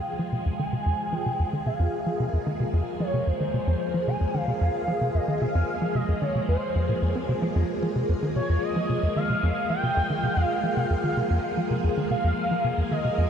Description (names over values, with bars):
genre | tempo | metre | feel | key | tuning
ambient | 112 BPM | 4/4 | straight | F minor | A4 = 440 Hz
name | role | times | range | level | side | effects
expressive portamento lead | melody | 0.0-13.3 s | C5 to Ab5 | -29 LUFS | equal | ensemble chorus, tape echo
phased string machine | sustained chords | 0.0-13.3 s | C3 to Ab4 | -29 LUFS | equal | ensemble chorus, phaser
tight sequencer bass | riff | 0.2-13.3 s | F2 to C4 | -26 LUFS | equal | analog chorus, tape echo
room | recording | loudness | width
wet huge ambient reverb, RT60 7.0 s | dark, warm production | -23 LUFS | side -8 dB against mid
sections
0.0-13.3 A section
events
filter sweep on analog synth bass 0.0-13.3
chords
0.0 Fm